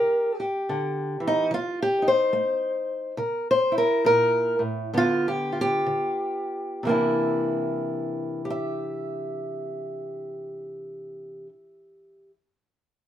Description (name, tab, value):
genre	acoustic country blues, solo or duo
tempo	60-74 BPM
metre	4/4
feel	swing 62% on 8ths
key	C mixolydian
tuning	A4 = 441 Hz
part	fingerpicked old ladder-braced acoustic guitar	solo	0.0-12.3 s	G2 to E5	-23 LUFS	equal	none
room	moderate studio reverb, RT60 0.5 s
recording	band playing live in one room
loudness	-23 LUFS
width	side -11 dB against mid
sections	0.0-6.8 A section; 6.8-10.8 B section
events	slowing down 0.0-6.8; steel-string acoustic guitar solo 0.0-6.8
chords	0.0 C; 1.5 F7; 3.2 C7; 4.9 G7; 6.8 C9